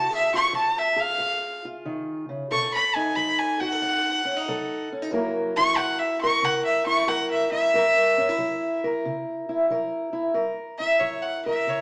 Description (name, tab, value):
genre	acoustic country blues, solo or duo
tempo	92 BPM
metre	4/4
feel	swing 67% on 8ths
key	F# mixolydian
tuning	A4 = 441 Hz
part	rich fiddle	melody	0.0-11.8 s	C#5 to C#6	-25 LUFS	equal	none
part	fingerpicked steel-string acoustic guitar	accompaniment	0.0-11.8 s	F#2 to A#4	-29 LUFS	equal	none
room	wet large studio reverb, RT60 0.9 s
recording	none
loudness	-24 LUFS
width	mono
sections	0.0-10.4 A section; 10.4-11.8 B section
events	fiddle solo 0.0-10.4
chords	0.0 C#; 2.5 B7; 5.1 F#7